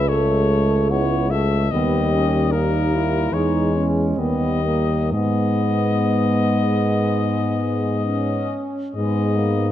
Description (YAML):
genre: classical, hymn-like piece for brass band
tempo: 58-76 BPM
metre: 4/4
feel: rubato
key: G# minor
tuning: A4 = 440 Hz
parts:
  - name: bright cornet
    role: melody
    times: 0.0-9.7 s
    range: A#4 to E5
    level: -26 LUFS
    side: left 9 dB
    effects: none
  - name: warm French horn section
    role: second line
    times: 0.0-9.7 s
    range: G#3 to A4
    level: -25 LUFS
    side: right 3 dB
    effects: none
  - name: clear trombone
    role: accompaniment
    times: 0.0-9.7 s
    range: G3 to B3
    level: -27 LUFS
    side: right 3 dB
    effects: none
  - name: warm euphonium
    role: accompaniment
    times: 0.0-9.7 s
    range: G3 to B3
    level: -26 LUFS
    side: left 2 dB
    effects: none
  - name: mellow tuba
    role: bass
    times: 0.0-9.7 s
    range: C#2 to G#2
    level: -21 LUFS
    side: equal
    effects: none
room: moderate recital hall reverb, RT60 1.6 s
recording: close, detailed microphones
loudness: -17 LUFS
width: side -12 dB against mid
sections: 0.0-8.9 A section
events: none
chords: 0.0 A/C#; 1.7 D#; 3.3 C#m/E; 4.2 D#; 5.1 G#m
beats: 0.10 0.91 | 1.73 2.53 3.33 4.18 | 5.12 6.10 7.04 8.04 | 8.95